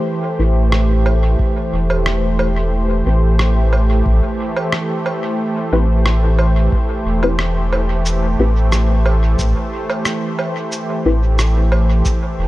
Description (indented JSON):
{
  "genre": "ambient dub",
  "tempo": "90 BPM",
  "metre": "4/4",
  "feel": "straight",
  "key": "A minor",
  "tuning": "A4 = 440 Hz",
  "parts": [
    { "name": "warm analog pad", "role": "sustained chords", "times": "0.0-12.5 s", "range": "E3 to C5", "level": "-20 LUFS", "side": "right 1 dB", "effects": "chorus, tremolo" },
    { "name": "filtered dub chord stab", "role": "stabs", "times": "0.4-11.2 s", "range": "C4 to B4", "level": "-23 LUFS", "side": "left 2 dB", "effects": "ensemble chorus, dub echo" },
    { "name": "warm sub bass", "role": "bass", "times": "0.4-12.5 s", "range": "E1 to A1", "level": "-15 LUFS", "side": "equal", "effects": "tube saturation" },
    { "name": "electronic rim click, woodblock and shaker", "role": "drums", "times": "0.7-12.2 s", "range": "none", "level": "-24 LUFS", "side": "right 1 dB", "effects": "studio reverb, dub echo" },
    { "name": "electronic kick drum", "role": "drums", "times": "1.4-12.2 s", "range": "none", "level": "-19 LUFS", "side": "equal", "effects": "studio reverb" }
  ],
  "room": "little or no reverb",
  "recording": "none",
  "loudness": "-14 LUFS",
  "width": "side -17 dB against mid",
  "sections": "0.0-12.5 A section",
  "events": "filter sweep on synth stab 0.0-12.5",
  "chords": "0.0 Am7"
}